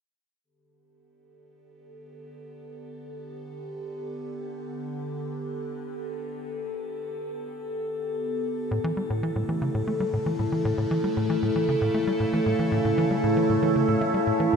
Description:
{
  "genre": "ambient, sequencer-driven space music",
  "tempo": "116 BPM",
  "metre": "4/4",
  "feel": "straight",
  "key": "G lydian",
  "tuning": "A4 = 440 Hz",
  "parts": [
    { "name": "evolving wavetable pad", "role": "sustained chords", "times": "1.9-14.6 s", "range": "C#3 to A4", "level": "-26 LUFS", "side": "equal", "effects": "phaser, built-in reverb, shimmer reverb" },
    { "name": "tight sequencer bass", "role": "riff", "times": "8.7-14.6 s", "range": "A2 to A3", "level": "-27 LUFS", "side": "equal", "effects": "cassette tape, tape echo" }
  ],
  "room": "wet huge ambient reverb, RT60 8.2 s",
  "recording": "dreamy mix soaked in reverb",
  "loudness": "-24 LUFS",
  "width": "side -6 dB against mid",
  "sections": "0.4-14.6 A section",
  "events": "fade-in on ambient pad 0.4-14.6",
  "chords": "0.4 Gadd9; 8.7 A",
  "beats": "| 0.44 0.95 1.47 1.99 | 2.51 3.02 3.54 4.06 | 4.58 5.09 5.61 6.13 | 6.64 7.16 7.68 8.20 | 8.71 9.23 9.75 10.26 | 10.78 11.30 11.82 12.33 | 12.85 13.37 13.88 14.40"
}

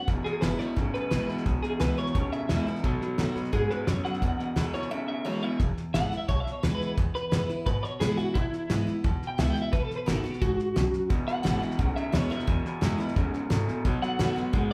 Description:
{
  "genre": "rockabilly",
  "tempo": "174 BPM",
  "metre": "4/4",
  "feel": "straight",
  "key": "E major",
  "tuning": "A4 = 442 Hz",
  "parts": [
    { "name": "electric guitar through a small old amp", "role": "melody", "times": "0.0-14.7 s", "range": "E4 to G5", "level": "-35 LUFS", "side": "equal", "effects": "tremolo" },
    { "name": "picked steel-string acoustic guitar", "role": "accompaniment", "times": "0.0-14.7 s", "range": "E2 to F#4", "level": "-35 LUFS", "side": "equal", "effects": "none" },
    { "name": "electric guitar through a small old amp", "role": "riff", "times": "0.1-5.6, 11.1-14.7 s", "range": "E2 to G#3", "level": "-34 LUFS", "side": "equal", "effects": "none" },
    { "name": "upright bass", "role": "bass", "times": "0.1-14.7 s", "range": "E1 to B2", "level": "-35 LUFS", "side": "equal", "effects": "none" },
    { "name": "cloth-damped thuddy drum kit", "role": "drums", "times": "0.1-14.7 s", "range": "hi-hat, kick drum, snare drum", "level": "-32 LUFS", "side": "equal", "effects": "none" }
  ],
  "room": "moderate large studio reverb, RT60 0.8 s",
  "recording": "band playing live in one room",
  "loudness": "-28 LUFS",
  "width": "mono",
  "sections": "0.0-5.6 A section; 5.6-14.7 B section",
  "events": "clean electric guitar solo 5.6-14.7",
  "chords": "0.1 E; 2.8 B7; 4.2 E; 9.7 B7; 11.1 E; 13.8 B7",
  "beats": "| 0.08 0.43 0.77 1.12 | 1.46 1.81 2.15 2.50 | 2.84 3.19 3.53 3.88 | 4.22 4.57 4.91 5.26 | 5.60 5.95 6.29 6.64 | 6.98 7.32 7.67 8.01 | 8.36 8.70 9.04 9.39 | 9.73 10.07 10.42 10.76 | 11.10 11.45 11.79 12.13 | 12.48 12.82 13.16 13.51 | 13.85 14.19 14.54"
}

